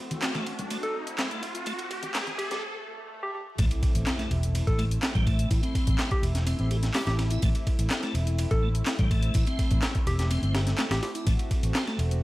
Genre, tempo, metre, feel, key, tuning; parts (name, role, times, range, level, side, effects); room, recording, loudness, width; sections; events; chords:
breakbeat, breaks; 125 BPM; 4/4; straight; A dorian; A4 = 440 Hz
phased analog pad; sustained chords; 0.0-12.2 s; A3 to F#4; -38 LUFS; left 1 dB; phaser, chorus, sidechain pumping
riser, swell and impact; sound effects; 0.0-5.5 s; -35 LUFS; equal
breakbeat sampler-style drum kit; drums; 0.1-12.1 s; hi-hat, kick drum, ride cymbal, snare drum; -28 LUFS; equal; high-pass filter on cymbals, small room ambience, high-pass filter on kick, high-pass filter on snare, high-pass filter on hats
house drum kit; drums; 0.1-12.2 s; handclaps, hi-hat; -36 LUFS; left 1 dB; overdrive, small room ambience
congas; percussion; 0.1-2.6 s; -39 LUFS; left 1 dB
tonewheel organ; riff; 0.2-12.0 s; G3 to G4; -35 LUFS; equal; overdrive, chorus vibrato, slow rotary speaker, tube saturation, vintage 12-bit sampler grit, low-pass filter, dub echo
soft struck synth lead; melody; 0.8-11.1 s; G4 to A4; -36 LUFS; equal; chorus, telephone sound, dub echo
fingered electric bass; bass; 3.6-12.2 s; E1 to A1; -26 LUFS; equal
digital ambience; vinyl crackle, high-pass filter; -24 LUFS; side -18 dB against mid
0.0-3.6 A section; 3.6-12.2 B section
build-up 0.0-3.6; riser 0.0-2.6; filter sweep on tonewheel organ 0.0-3.6; break 2.6-3.6; swell 2.6-3.6; drop 3.6-12.2; impact 3.6-5.5
0.0 Am